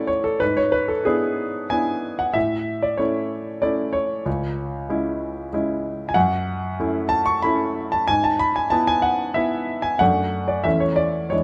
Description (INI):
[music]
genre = classical, romantic character piece for solo piano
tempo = 94 BPM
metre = 3/4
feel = rubato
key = A major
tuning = A4 = 440 Hz
[part]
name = clear grand piano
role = solo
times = 0.0-11.4 s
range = C#2 to C#6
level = -22 LUFS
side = equal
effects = none
[sound]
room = light reverb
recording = close, detailed microphones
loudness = -22 LUFS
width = mono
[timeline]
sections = 0.0-11.4 A section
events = none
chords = 0.4 E7/G#; 2.4 A; 4.3 C#m; 6.1 F#m7; 8.1 E/G#; 10.0 D/F#; 10.6 A/E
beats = | 0.41 1.06 1.72 | 2.35 2.99 3.63 | 4.26 4.89 5.52 | 6.15 6.78 7.42 | 8.07 8.72 9.35 | 10.00 10.65 11.32